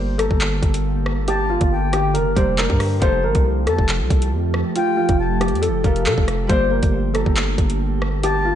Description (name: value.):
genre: hip hop, drill.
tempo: 138 BPM.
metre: 4/4.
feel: half-time.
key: G minor.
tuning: A4 = 438 Hz.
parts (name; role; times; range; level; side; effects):
Celtic harp; accompaniment; 0.0-8.6 s; F3 to D5; -29 LUFS; right 1 dB; none.
glassy FM pad; sustained chords; 0.2-8.6 s; D3 to G4; -26 LUFS; right 1 dB; ensemble chorus, built-in reverb.
distorted 808-style bass; bass; 0.0-8.5 s; F1 to C3; -22 LUFS; equal; distortion.
dark concert grand piano; melody; 0.2-8.6 s; F4 to C5; -22 LUFS; left 1 dB; wide subtle chorus, tape echo.
mellow silver concert flute; second line; 0.2-8.6 s; G5 to Bb5; -28 LUFS; left 5 dB; tape echo.
drill drum kit; drums; 0.2-8.3 s; handclaps, hi-hat, kick drum, rim click; -21 LUFS; equal; vintage 12-bit sampler grit.
room: light reverb, small room reverb.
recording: nothing above 10.3 kHz.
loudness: -16 LUFS.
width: side -10 dB against mid.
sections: 0.0-8.6 A section.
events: none.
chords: 0.0 Gm; 3.0 Fadd9; 6.5 Gm.